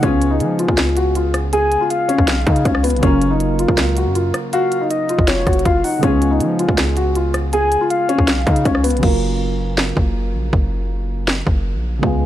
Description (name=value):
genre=hip hop, trap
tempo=160 BPM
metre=4/4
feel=half-time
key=F# major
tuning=A4 = 441 Hz
part: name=dark concert grand piano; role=melody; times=0.0-9.0 s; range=B3 to G#4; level=-19 LUFS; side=left 1 dB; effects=ping-pong delay
part: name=soft electric-piano-like synth keys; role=accompaniment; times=0.0-12.3 s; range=C#3 to A#4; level=-23 LUFS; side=right 2 dB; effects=chorus, low-pass filter
part: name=hard-hitting 808-style bass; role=bass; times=0.0-12.3 s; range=E#1 to E#3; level=-20 LUFS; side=equal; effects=none
part: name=trap drum kit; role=drums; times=0.0-12.1 s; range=crash cymbal, hi-hat, kick drum, rim click, snare drum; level=-19 LUFS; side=equal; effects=none
part: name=soft octave-layered synth lead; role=second line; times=1.5-9.0 s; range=C#5 to G#5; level=-24 LUFS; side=left 3 dB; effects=chorus, ping-pong delay
room=digital ambience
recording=none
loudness=-14 LUFS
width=side -12 dB against mid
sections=0.0-9.0 A section; 9.0-12.3 B section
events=break 9.0-12.3; filter sweep on synth keys 9.0-12.3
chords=0.0 C#7; 3.0 F#maj7; 6.0 C#7; 9.0 F#maj7